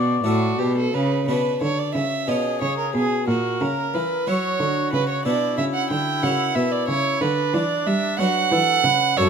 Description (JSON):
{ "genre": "classical, baroque-style sonata movement with continuo", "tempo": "61 BPM (dotted quarters)", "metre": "6/8", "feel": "straight", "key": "B minor", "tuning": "A4 = 440 Hz", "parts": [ { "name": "clear oboe", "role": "melody", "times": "0.0-9.3 s", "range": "D4 to D5", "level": "-29 LUFS", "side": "left 8 dB", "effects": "none" }, { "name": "rich violin", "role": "second line", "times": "0.0-9.3 s", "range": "F#4 to G5", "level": "-22 LUFS", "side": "right 6 dB", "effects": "none" }, { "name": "harpsichord", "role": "accompaniment", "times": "0.0-9.3 s", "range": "F#2 to C#5", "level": "-26 LUFS", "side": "left 4 dB", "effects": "none" }, { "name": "rich cello", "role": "bass", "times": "0.0-9.3 s", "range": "F#2 to G3", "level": "-24 LUFS", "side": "right 2 dB", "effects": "none" } ], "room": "light reverb", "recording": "close, detailed microphones", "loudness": "-19 LUFS", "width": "side -6 dB against mid", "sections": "0.0-1.3 A section; 1.3-9.3 A section", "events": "none", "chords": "0.0 D; 1.3 Bm; 2.3 C#7/B; 3.3 F#7/A#; 5.3 Bm; 6.2 F#7; 7.2 Bm/D" }